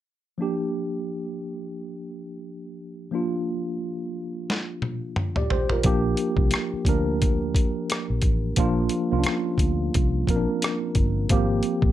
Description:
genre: R&B, neo-soul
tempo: 88 BPM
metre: 4/4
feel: swing 57% on 16ths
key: Bb major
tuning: A4 = 440 Hz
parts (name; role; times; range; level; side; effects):
- mellow tine electric piano; accompaniment; 0.4-11.9 s; F3 to D5; -26 LUFS; right 1 dB; medium stereo tremolo
- boom bap sampler-style drum kit; drums; 4.5-11.9 s; hi-hat, kick drum, rim click, snare drum, toms; -23 LUFS; equal; none
- vintage muted fingered electric bass; bass; 5.8-11.9 s; G1 to D2; -26 LUFS; equal; none
room: moderate small room reverb, RT60 0.5 s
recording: none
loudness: -22 LUFS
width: side -12 dB against mid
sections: 0.4-5.8 A section; 5.8-11.9 B section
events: drum fill 4.5-5.8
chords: 0.4 Bb6; 11.3 Abmaj13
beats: | 0.39 1.07 1.75 2.44 | 3.12 3.80 4.48 5.16 | 5.84 6.53 7.21 7.89 | 8.57 9.25 9.94 10.62 | 11.30

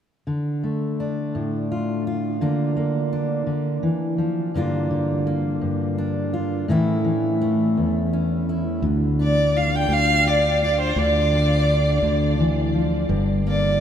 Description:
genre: acoustic folk-pop ballad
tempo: 56 BPM (dotted quarters)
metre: 6/8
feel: straight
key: D minor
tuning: A4 = 440 Hz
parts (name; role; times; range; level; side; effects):
- fingerpicked steel-string acoustic guitar; accompaniment; 0.3-13.8 s; E2 to F4; -22 LUFS; equal; none
- fingered electric bass; bass; 8.8-13.8 s; G1 to D2; -22 LUFS; equal; none
- clear violin; melody; 9.2-13.8 s; C5 to G5; -20 LUFS; equal; none
room: wet huge ambient reverb, RT60 7.6 s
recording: in a vast, echoing space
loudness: -19 LUFS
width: side -9 dB against mid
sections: 0.3-8.8 A section; 8.8-13.8 B section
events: none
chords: 0.3 Dm; 2.4 Bb/D; 4.6 Gm7; 6.7 A; 8.8 Dm; 11.0 Dmadd9; 13.1 Gm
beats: | 0.27 1.34 | 2.41 3.48 | 4.55 5.62 | 6.69 7.76 | 8.83 9.90 | 10.97 12.03 | 13.09

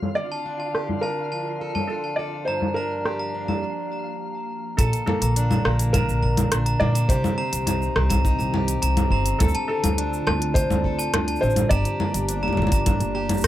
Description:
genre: folktronica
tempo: 104 BPM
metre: 4/4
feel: straight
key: Bb major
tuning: A4 = 439 Hz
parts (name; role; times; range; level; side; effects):
- warbly tape-like pad; sustained chords; 0.0-13.5 s; D3 to G4; -33 LUFS; equal; chorus, built-in reverb, vintage 12-bit sampler grit
- organic electronic drum kit; drums; 0.0-13.5 s; cabasa, congas, hi-hat, rim click; -25 LUFS; equal; low-pass filter on perc, low-pass filter on snare, low-pass filter on hats, low-pass filter on room
- twinkling granular texture; texture; 0.0-3.6 s; F4 to F5; -40 LUFS; right 2 dB; built-in reverb
- felt-muted upright piano; melody; 0.2-13.5 s; A4 to D5; -28 LUFS; equal; tape echo
- picked plugged-in steel-string acoustic guitar; arpeggios; 0.2-13.5 s; G2 to A4; -31 LUFS; equal; tape echo
- glockenspiel with hard plastic mallets; second line; 0.3-13.5 s; A5 to Bb5; -29 LUFS; left 1 dB; vintage 12-bit sampler grit, tape echo
- upright bass; bass; 4.8-13.5 s; G1 to Bb2; -24 LUFS; equal; tube saturation
- kick drum; drums; 4.8-13.0 s; none; -23 LUFS; equal; none
room: light reverb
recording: none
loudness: -20 LUFS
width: side -13 dB against mid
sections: 0.0-4.8 A section; 4.8-13.5 B section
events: filter sweep on ambient pad 0.0-4.8; break 3.6-4.8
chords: 0.2 Dm7; 2.5 Gm7; 4.8 Bbmaj7; 7.1 Cm; 9.4 Dm7; 11.7 Gm7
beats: | 0.17 0.75 1.32 1.90 | 2.48 3.06 3.63 4.21 | 4.79 5.36 5.94 6.52 | 7.09 7.67 8.25 8.82 | 9.40 9.98 10.55 11.13 | 11.71 12.29 12.86 13.44

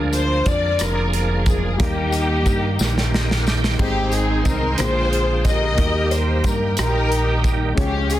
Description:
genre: slow gospel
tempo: 60 BPM (dotted quarters)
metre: 6/8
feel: straight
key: unclear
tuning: A4 = 440 Hz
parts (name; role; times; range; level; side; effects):
- warm grand piano; accompaniment; 0.0-8.2 s; Ab2 to G5; -27 LUFS; left 3 dB; none
- bright tonewheel organ; sustained chords; 0.0-8.2 s; D3 to G5; -27 LUFS; right 3 dB; slow rotary speaker, chorus vibrato
- fingered electric bass; bass; 0.0-8.2 s; F1 to G2; -22 LUFS; equal; none
- warm studio string section; melody; 0.1-8.2 s; Bb3 to Eb5; -22 LUFS; left 1 dB; none
- modern studio drum kit; drums; 0.1-8.2 s; crash cymbal, hi-hat, kick drum, rim click, snare drum; -23 LUFS; equal; none
- tambourine; percussion; 0.1-8.2 s; none; -33 LUFS; left 7 dB; none
room: studio reverb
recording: dense, heavily limited modern master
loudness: -17 LUFS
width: side -13 dB against mid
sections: 0.0-8.2 A section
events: drum fill 2.8-3.8; tonewheel organ fill 2.8-3.8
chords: 0.0 Bb7/D; 1.8 Eb; 3.8 Ab; 4.8 Bb13; 5.8 Eb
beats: 0.80 | 1.79 2.79 | 3.79 4.79 | 5.78 6.78 | 7.78

